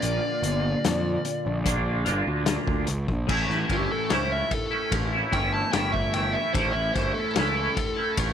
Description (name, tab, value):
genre	psychedelic rock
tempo	74 BPM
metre	4/4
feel	straight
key	A phrygian dominant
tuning	A4 = 440 Hz
part	fuzz lead guitar	melody	0.0-8.1 s	G4 to A5	-30 LUFS	left 1 dB	distortion, slapback echo
part	twangy electric guitar	riff	0.0-8.3 s	A2 to F4	-27 LUFS	right 1 dB	rotary speaker, double-tracked left and right
part	fuzz picked electric bass	bass	0.0-8.3 s	G1 to F2	-28 LUFS	right 1 dB	overdrive
part	vintage drum kit	drums	0.0-8.3 s	crash cymbal, hi-hat, kick drum, ride cymbal, snare drum	-29 LUFS	left 3 dB	none
room	little or no reverb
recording	1960s-style stereo, faint mains hum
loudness	-23 LUFS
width	side -8 dB against mid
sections	0.0-3.3 A section; 3.3-8.3 B section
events	lead electric guitar solo 3.3-8.3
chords	0.0 Bb; 3.3 A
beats	| 0.01 0.83 1.65 2.46 | 3.28 4.09 4.91 5.73 | 6.54 7.36 8.18